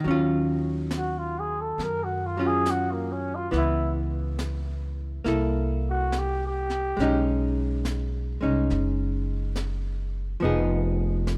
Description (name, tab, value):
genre	jazz ballad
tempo	70 BPM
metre	4/4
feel	swing 68% on 8ths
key	Eb minor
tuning	A4 = 439 Hz
part	archtop guitar, miked and amplified	accompaniment	0.0-11.4 s	Eb3 to A4	-30 LUFS	equal	none
part	vintage brush drum kit	drums	0.0-11.4 s	brushed snare drum, hi-hat, snare drum	-39 LUFS	equal	none
part	upright bass	bass	0.1-11.4 s	F1 to Gb2	-31 LUFS	equal	none
part	growling trumpet	melody	1.0-7.3 s	Bb3 to Bb4	-31 LUFS	equal	none
room	light reverb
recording	rough home demo mix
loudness	-27 LUFS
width	mono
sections	0.0-11.4 A section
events	trumpet solo 0.0-11.4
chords	0.0 Ebm9; 3.5 Dbm7; 5.2 C6; 7.0 B69; 10.4 Fm7b5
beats	| 0.04 0.91 1.78 2.65 | 3.52 4.38 5.24 6.11 | 6.97 7.83 8.69 9.55 | 10.41 11.27